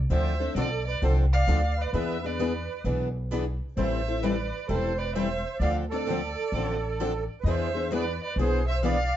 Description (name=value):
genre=acoustic string swing (jazz manouche)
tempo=131 BPM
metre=4/4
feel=swing 65% on 8ths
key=unclear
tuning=A4 = 444 Hz
part: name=upright bass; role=bass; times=0.0-9.1 s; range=E1 to E2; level=-28 LUFS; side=equal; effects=none
part: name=warm violin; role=melody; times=0.1-9.2 s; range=C5 to F5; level=-32 LUFS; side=right 1 dB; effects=plate reverb
part: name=musette accordion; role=second line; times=0.1-9.2 s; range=G#4 to D5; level=-33 LUFS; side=right 5 dB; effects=none
part: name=picked steel-string acoustic guitar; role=accompaniment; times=0.1-9.0 s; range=D3 to A4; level=-31 LUFS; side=left 6 dB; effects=none
part: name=picked swing-style acoustic guitar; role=accompaniment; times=0.1-9.0 s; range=D3 to B4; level=-35 LUFS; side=right 4 dB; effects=none
room=light reverb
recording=dark, warm production, nothing above 7.8 kHz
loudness=-25 LUFS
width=side -12 dB against mid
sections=0.0-9.2 A section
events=none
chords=0.1 Dm7; 1.9 E7; 3.8 Am9; 5.6 Dm7; 7.4 E7b13